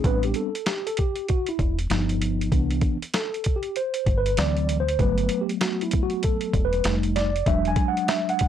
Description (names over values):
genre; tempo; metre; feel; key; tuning
hip hop, jazz-hop; 97 BPM; 4/4; swing 62% on 16ths; A dorian; A4 = 440 Hz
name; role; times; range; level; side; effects
mellow tine electric piano; accompaniment; 0.0-8.5 s; E3 to G#5; -25 LUFS; equal; medium stereo tremolo
deep dub fingered electric bass; bass; 0.0-7.7 s; E1 to D2; -25 LUFS; equal; none
boom bap sampler-style drum kit; drums; 0.0-8.5 s; hi-hat, kick drum, snare drum; -25 LUFS; equal; vintage 12-bit sampler grit
room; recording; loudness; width
little or no reverb; dry, gritty hardware recording; -22 LUFS; side -10 dB against mid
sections
0.0-8.5 A section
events
tine electric piano solo 0.0-8.5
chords
0.0 Am11; 1.9 Gaug7; 2.5 Cmaj7; 4.4 D7; 5.0 Gmaj7; 6.8 F9; 7.5 E7